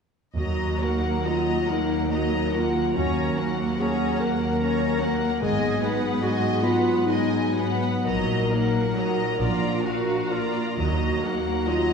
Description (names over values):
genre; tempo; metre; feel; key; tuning
classical, slow romantic movement for symphony orchestra; 40-51 BPM (dotted quarters); 6/8; rubato; Eb minor; A4 = 440 Hz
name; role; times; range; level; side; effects
rich chamber violin section; melody; 0.4-11.9 s; F5 to Bb5; -33 LUFS; left 4 dB; none
mellow clarinet; second line; 0.4-11.9 s; Eb4 to Bb4; -28 LUFS; left 1 dB; none
rich studio violin section; second line; 0.4-11.9 s; Bb4 to Eb5; -33 LUFS; left 1 dB; none
rich chamber viola section; accompaniment; 0.4-11.9 s; Gb3 to Gb4; -30 LUFS; right 2 dB; none
dark French horn section; sustained chords; 0.4-11.9 s; F3 to Eb4; -30 LUFS; left 2 dB; none
concert harp; arpeggios; 0.4-11.9 s; Ab2 to Eb5; -32 LUFS; left 3 dB; none
clear chamber double bass section; bass; 0.4-11.6 s; Ab1 to Eb2; -31 LUFS; right 3 dB; none
rich studio cello section; bass; 0.4-11.9 s; Eb2 to Bb2; -29 LUFS; right 2 dB; none
room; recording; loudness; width
wet scoring stage reverb, RT60 1.8 s; heard from further back in the room; -22 LUFS; side -6 dB against mid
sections
0.4-11.9 A section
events
none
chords
0.4 Ebm; 3.0 Gb/Eb; 5.4 Abm7; 8.1 Ebm/Bb; 9.4 Bb; 10.8 Ebm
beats
| 0.37 1.69 | 2.96 4.21 | 5.43 6.63 | 8.06 9.40 | 10.78